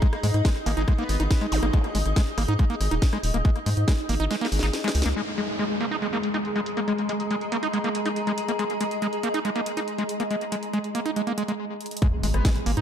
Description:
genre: psychedelic trance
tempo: 140 BPM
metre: 4/4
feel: straight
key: unclear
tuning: A4 = 442 Hz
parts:
  - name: pulsing gated texture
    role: sustained chords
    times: 0.0-12.8 s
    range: G#3 to G#4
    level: -31 LUFS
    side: equal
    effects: chorus, built-in reverb, sidechain pumping
  - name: screaming distorted acid line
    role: riff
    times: 0.0-12.8 s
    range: G#3 to D#4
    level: -28 LUFS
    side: moving between left 5 dB and right 5 dB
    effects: distortion, chorus, auto-pan, sidechain pumping, ping-pong delay
  - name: electronic kick drum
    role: drums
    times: 0.0-4.0, 12.0-12.5 s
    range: none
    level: -21 LUFS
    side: equal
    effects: none
  - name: techno drum kit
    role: drums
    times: 0.0-12.8 s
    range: hi-hat, rim click, snare drum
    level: -33 LUFS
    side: equal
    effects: low-pass filter on hats, low-pass filter on snare, low-pass filter on room
  - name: granular cloud pad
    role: texture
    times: 0.0-11.6 s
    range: G#4 to D#6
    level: -33 LUFS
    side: left 1 dB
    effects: built-in reverb, sidechain pumping
  - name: round analog bass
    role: bass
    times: 0.2-5.1, 12.2-12.8 s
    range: D#1 to G#2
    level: -24 LUFS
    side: equal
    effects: none
  - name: metallic wobble bass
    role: second line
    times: 0.7-1.4, 12.3-12.5 s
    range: G#3 to B3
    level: -37 LUFS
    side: left 2 dB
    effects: lush chorus, sidechain pumping, high-pass filter, digital delay
  - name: zap, downlifter and impact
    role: sound effects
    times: 1.5-1.6, 5.2-8.6, 12.1-12.8 s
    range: none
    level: -34 LUFS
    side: equal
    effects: none
room: light reverb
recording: dark, warm production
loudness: -22 LUFS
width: side -9 dB against mid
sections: 0.0-5.2 A section; 5.2-12.0 B section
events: kick drops out 4.3-5.2; drum fill 4.3-5.2, 11.8; band accent 5.0; filter sweep on drum 5.2-12.0; stop 11.6-12.0; impact 12.0-12.8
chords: 0.0 G#5

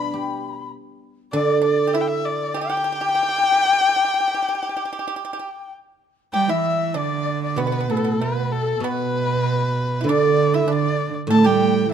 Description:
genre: chinese traditional, Chinese chamber ensemble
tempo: 97 BPM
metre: 4/4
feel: rubato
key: G gong mode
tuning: A4 = 440 Hz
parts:
  - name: dark erhu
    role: melody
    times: 0.0-11.9 s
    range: A4 to B5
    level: -23 LUFS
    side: left 2 dB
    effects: none
  - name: pipa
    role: second line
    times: 0.0-11.9 s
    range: B3 to B4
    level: -29 LUFS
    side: right 4 dB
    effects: none
  - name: reedy dizi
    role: second line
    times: 0.0-11.9 s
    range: A4 to G6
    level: -27 LUFS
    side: left 9 dB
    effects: none
  - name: guzheng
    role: accompaniment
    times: 0.0-3.2, 7.6-11.9 s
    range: A2 to G4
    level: -22 LUFS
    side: right 4 dB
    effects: none
  - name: dark cello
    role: second line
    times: 6.3-11.9 s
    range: A2 to A3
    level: -22 LUFS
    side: right 5 dB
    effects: none
room: light reverb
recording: close, detailed microphones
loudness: -18 LUFS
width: side -8 dB against mid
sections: 0.0-6.3 A section; 6.3-11.9 B section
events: none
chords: none

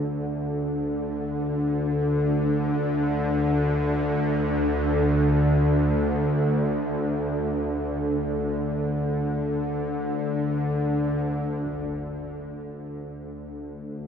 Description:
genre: dark ambient drone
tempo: free time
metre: none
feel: none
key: unclear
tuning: A4 = 438 Hz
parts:
  - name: bowed-like drone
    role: drone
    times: 0.0-14.1 s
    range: D2 to D3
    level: -23 LUFS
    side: equal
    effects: built-in reverb
  - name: impact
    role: percussion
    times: 11.7-11.9 s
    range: none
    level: -50 LUFS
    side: right 2 dB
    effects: none
room: wet huge ambient reverb, RT60 7.9 s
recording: cassette tape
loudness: -22 LUFS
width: side -7 dB against mid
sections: 0.0-11.7 A section; 11.7-14.1 B section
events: none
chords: none

